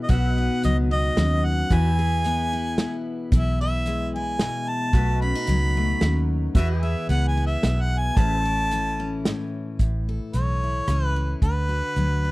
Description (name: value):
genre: honky-tonk and classic country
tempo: 111 BPM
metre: 3/4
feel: straight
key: A major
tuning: A4 = 439 Hz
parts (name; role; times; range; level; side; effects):
- warm harmonica; melody; 0.0-12.3 s; B4 to B5; -27 LUFS; right 1 dB; none
- picked steel-string acoustic guitar; accompaniment; 0.0-12.3 s; F#2 to B4; -28 LUFS; left 3 dB; none
- pedal steel guitar; sustained chords; 0.0-9.8 s; F#4 to E5; -35 LUFS; right 3 dB; none
- vintage muted fingered electric bass; bass; 0.1-12.3 s; A1 to E2; -23 LUFS; equal; none
- vintage drum kit; drums; 0.1-12.1 s; hi-hat, kick drum, rim click, snare drum; -22 LUFS; equal; none
room: small room reverb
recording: dry, close 1970s-style studio recording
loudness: -20 LUFS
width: side -20 dB against mid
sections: 0.0-9.8 A section; 9.8-12.3 B section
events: none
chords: 0.1 B; 1.7 E; 4.9 B7; 6.6 E; 8.2 A; 11.4 D